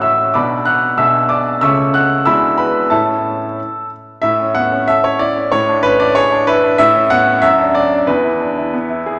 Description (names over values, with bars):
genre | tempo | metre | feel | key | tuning
classical-period piano sonatina | 93 BPM | 2/4 | straight | A major | A4 = 440 Hz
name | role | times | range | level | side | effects
clear baby grand piano | solo | 0.0-9.2 s | A1 to F#6 | -14 LUFS | equal | none
room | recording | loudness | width
wet recital hall reverb, RT60 1.9 s | none | -14 LUFS | mono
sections
0.0-4.2 A section; 4.2-9.2 A section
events
none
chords
0.3 Bm; 1.0 G#dim/B; 1.6 A/C#; 2.3 E9; 2.9 A; 5.5 E7/A; 6.8 A; 7.4 D/F#; 8.1 E5